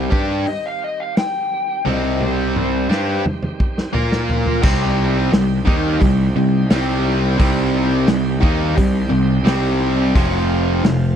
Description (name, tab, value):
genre	blues rock power trio and southern rock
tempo	87 BPM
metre	4/4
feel	straight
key	C minor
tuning	A4 = 440 Hz
part	bright tonewheel organ	sustained chords	0.0-11.2 s	Eb3 to Db5	-28 LUFS	right 6 dB	slow rotary speaker, overdrive
part	distorted electric guitar	riff	0.0-11.1 s	F2 to Bb4	-18 LUFS	equal	overdrive
part	fuzz picked electric bass	bass	0.0-11.2 s	F1 to Bb2	-20 LUFS	equal	overdrive
part	raw garage drum kit	drums	0.1-11.0 s	crash cymbal, hi-hat, kick drum, snare drum, toms	-19 LUFS	equal	none
part	overdriven slide guitar	melody	0.5-3.2 s	C5 to G5	-23 LUFS	left 2 dB	none
room	little or no reverb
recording	dry, close 1970s-style studio recording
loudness	-15 LUFS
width	side -9 dB against mid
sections	0.0-4.6 A section; 4.6-11.2 B section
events	drum fill 1.9-4.6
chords	0.0 Cm; 3.9 Bb5; 4.6 Cm; 10.2 F5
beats	0.47 1.16 | 1.86 2.56 3.25 3.94 | 4.64 5.33 6.02 6.71 | 7.40 8.09 8.78 9.47 | 10.16 10.85